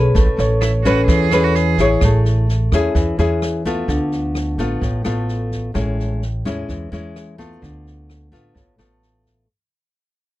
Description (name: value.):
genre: bossa nova.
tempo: 129 BPM.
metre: 4/4.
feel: straight.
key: A major.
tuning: A4 = 443 Hz.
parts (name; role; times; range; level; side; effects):
vibraphone with medium mallets; melody; 0.0-1.5 s; G#4 to A4; -23 LUFS; left 2 dB; none.
nylon-string guitar; accompaniment; 0.0-9.5 s; A2 to C#5; -20 LUFS; left 1 dB; none.
upright bass; bass; 0.0-9.4 s; A1 to E2; -19 LUFS; right 1 dB; none.
open jazz drum kit; drums; 0.1-9.3 s; kick drum, rim click, snare drum; -23 LUFS; equal; none.
clear concert grand piano; accompaniment; 0.4-2.0 s; C#5; -28 LUFS; right 2 dB; none.
clear cello; second line; 0.6-2.0 s; E4 to G#4; -22 LUFS; right 13 dB; none.
room: little or no reverb.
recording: dry, close 1970s-style studio recording.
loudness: -15 LUFS.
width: side -16 dB against mid.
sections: 0.0-2.0 A section; 2.0-9.5 B section.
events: fade-out 2.0-9.5.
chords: 0.2 Amaj9; 2.0 Amaj7; 3.9 Dm6; 5.8 Amaj7; 7.6 Dm6.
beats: | 0.16 0.62 1.09 1.55 | 2.02 2.49 2.95 3.42 | 3.89 4.35 4.82 5.29 | 5.75 6.22 6.69 7.15 | 7.62 8.09 8.55 9.02.